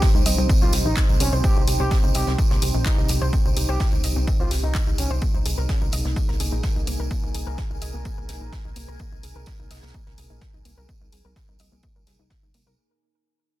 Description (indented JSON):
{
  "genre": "melodic techno",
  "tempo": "127 BPM",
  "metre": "4/4",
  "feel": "straight",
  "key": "unclear",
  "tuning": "A4 = 441 Hz",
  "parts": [
    { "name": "expressive synth lead", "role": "melody", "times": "0.0-5.1 s", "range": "Db4 to G4", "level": "-32 LUFS", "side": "right 1 dB", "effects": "chorus, sidechain pumping, digital delay" },
    { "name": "dark analog pad", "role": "sustained chords", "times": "0.0-12.7 s", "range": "Bb3 to Ab4", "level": "-35 LUFS", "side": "right 2 dB", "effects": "chorus, sidechain pumping" },
    { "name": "soft round pluck", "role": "arpeggios", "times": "0.0-12.7 s", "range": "Bb3 to Eb5", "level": "-34 LUFS", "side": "left 1 dB", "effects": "chorus, sidechain pumping, ping-pong delay" },
    { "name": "electronic kick drum", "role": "drums", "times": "0.0-12.4 s", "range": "none", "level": "-22 LUFS", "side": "equal", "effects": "small room ambience" },
    { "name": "soft brush drum kit", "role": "drums", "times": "0.0-12.7 s", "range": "hi-hat, snare drum, tambourine", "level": "-39 LUFS", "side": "right 1 dB", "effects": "sidechain pumping on hats, high-pass filter on hats, small room ambience, soft clipping on snare, high-pass filter on snare, sidechain pumping on perc, high-pass filter on perc, high-pass filter on room" },
    { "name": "tambourine", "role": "percussion", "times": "0.0-12.8 s", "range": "none", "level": "-35 LUFS", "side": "right 5 dB", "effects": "none" },
    { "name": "deep dark ambient pad", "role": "texture", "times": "0.0-12.8 s", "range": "Eb4 to Ab5", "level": "-35 LUFS", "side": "right 2 dB", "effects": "chorus, built-in reverb, sidechain pumping" },
    { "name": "plucky analog bass", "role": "bass", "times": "0.1-12.8 s", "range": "Bb1 to Db2", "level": "-25 LUFS", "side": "equal", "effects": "sidechain pumping" },
    { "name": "house drum kit", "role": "drums", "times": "0.3-12.6 s", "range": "handclaps, hi-hat", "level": "-30 LUFS", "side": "left 2 dB", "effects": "sidechain pumping on hats, small room ambience" }
  ],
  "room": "small room ambience",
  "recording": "dense, heavily limited modern master",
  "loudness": "-19 LUFS",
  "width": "side -16 dB against mid",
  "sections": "0.0-12.8 A section",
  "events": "fade-out 0.0-12.8",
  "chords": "0.0 Cm; 5.2 Ebsus4",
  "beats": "0.02 0.49 0.97 | 1.44 1.91 2.38 2.86 | 3.33 3.80 4.27 4.75 | 5.22 5.69 6.16 6.64 | 7.11 7.58 8.05 8.53 | 9.00 9.47 9.94 10.42 | 10.89 11.36 11.83 12.30"
}